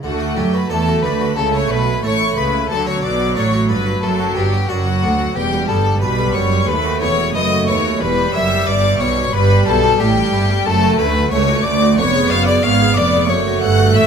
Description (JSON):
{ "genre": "classical, baroque-style concerto movement with solo episodes", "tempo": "90 BPM", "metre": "4/4", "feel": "straight", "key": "D major", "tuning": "A4 = 441 Hz", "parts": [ { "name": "clear violin", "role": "melody", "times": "0.0-14.1 s", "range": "F#4 to F#5", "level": "-21 LUFS", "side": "left 4 dB", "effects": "none" }, { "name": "rich chamber violin section", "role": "melody", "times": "0.0-14.1 s", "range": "F#5 to F#6", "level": "-23 LUFS", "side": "left 3 dB", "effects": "none" }, { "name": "rich chamber violin section", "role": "second line", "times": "0.0-14.1 s", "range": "F#4 to F#5", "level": "-23 LUFS", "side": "left 8 dB", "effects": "none" }, { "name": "harpsichord", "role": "accompaniment", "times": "0.0-14.1 s", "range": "C#2 to E5", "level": "-25 LUFS", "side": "equal", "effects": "none" }, { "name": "rich chamber viola section", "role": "accompaniment", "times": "0.0-14.1 s", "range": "F#3 to B3", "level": "-20 LUFS", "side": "right 4 dB", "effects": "none" }, { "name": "rich chamber cello section", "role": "bass", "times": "0.0-14.1 s", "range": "C#2 to F#3", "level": "-20 LUFS", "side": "right 2 dB", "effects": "none" }, { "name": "rich chamber double bass section", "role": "bass", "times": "0.0-14.1 s", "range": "E1 to F#2", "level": "-22 LUFS", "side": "right 3 dB", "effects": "none" } ], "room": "moderate concert hall reverb, RT60 2.0 s", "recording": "close, detailed microphones", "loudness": "-13 LUFS", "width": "side -7 dB against mid", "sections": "0.0-14.1 A section", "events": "none", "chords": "0.0 D; 1.4 A; 2.7 D; 5.4 Em; 6.7 B7; 8.0 Em; 10.7 F#m; 12.0 C#7/E#; 13.3 F#m" }